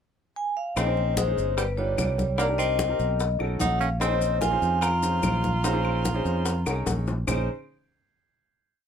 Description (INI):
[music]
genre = Afro-Cuban jazz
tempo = 147 BPM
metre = 4/4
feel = straight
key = Bb minor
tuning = A4 = 437 Hz
[part]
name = vibraphone with medium mallets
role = melody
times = 0.4-6.8 s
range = B4 to Bb5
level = -27 LUFS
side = left 2 dB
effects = plate reverb
[part]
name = warm tenor saxophone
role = second line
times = 0.8-6.8 s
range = G3 to F4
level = -32 LUFS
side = right 5 dB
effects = none
[part]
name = warm concert grand piano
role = accompaniment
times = 0.8-7.5 s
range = C4 to Db5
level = -32 LUFS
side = right 2 dB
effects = none
[part]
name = fingered electric bass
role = bass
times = 0.8-7.5 s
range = G1 to F2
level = -27 LUFS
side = equal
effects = none
[part]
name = bongos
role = percussion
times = 0.8-7.4 s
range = none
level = -34 LUFS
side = left 4 dB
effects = none
[part]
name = claves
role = percussion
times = 0.8-7.4 s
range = none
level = -38 LUFS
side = left 4 dB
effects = none
[part]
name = congas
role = percussion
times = 0.8-7.4 s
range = none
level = -34 LUFS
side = left 2 dB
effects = none
[part]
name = maracas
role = percussion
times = 0.8-7.4 s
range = none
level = -38 LUFS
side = left 6 dB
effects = none
[sound]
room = light reverb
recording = close, detailed microphones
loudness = -23 LUFS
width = side -8 dB against mid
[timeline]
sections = 0.0-0.8 pickup bar; 0.8-7.3 A section; 7.3-8.9 final chord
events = drum fill 6.7-7.3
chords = 0.0 N.C.; 0.8 Bbm11; 1.6 G7b13; 2.4 Cm9; 3.2 B9; 4.0 Bbm11